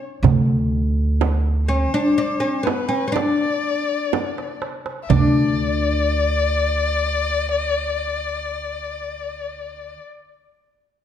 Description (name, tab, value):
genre	Arabic maqam ensemble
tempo	124 BPM (eighths)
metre	10/8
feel	straight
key	unclear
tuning	A4 = 441 Hz
part	upright bass	bass	0.2-9.9 s	D2	-22 LUFS	right 1 dB	none
part	darbuka	percussion	0.2-5.6 s	none	-22 LUFS	right 4 dB	none
part	frame drum	percussion	0.2-5.5 s	none	-26 LUFS	right 9 dB	none
part	oud	melody	1.7-9.9 s	B3 to D4	-22 LUFS	left 2 dB	none
part	dark violin	second line	1.7-10.0 s	B4 to E5	-24 LUFS	left 5 dB	none
room	wet recital hall reverb, RT60 1.5 s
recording	dark, warm production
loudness	-18 LUFS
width	side -9 dB against mid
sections	0.0-5.1 A section; 5.1-9.9 B section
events	drum fill 4.1-5.1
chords	none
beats	| 0.24 0.73 1.21 1.70 2.19 2.67 3.16 3.64 4.13 4.61 | 5.10 5.58 6.07 6.55 7.04 7.52 8.01 8.49 8.98 9.46